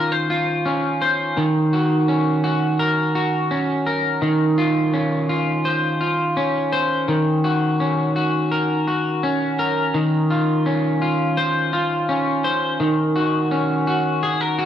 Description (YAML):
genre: dream pop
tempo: 84 BPM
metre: 4/4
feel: straight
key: Eb dorian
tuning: A4 = 440 Hz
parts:
  - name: electric guitar at the edge of break-up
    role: solo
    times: 0.0-14.7 s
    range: Eb3 to C5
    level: -18 LUFS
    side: equal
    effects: lush chorus, analog delay
room: little or no reverb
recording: dry, gritty hardware recording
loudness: -18 LUFS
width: side -10 dB against mid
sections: 0.0-14.7 A section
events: none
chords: 0.0 Bbmadd9/Eb (rootless); 1.4 Ebm7; 4.2 Dbmaj9/Eb; 7.1 Ebm7; 9.9 Dbmaj9/Eb; 12.8 Ebm7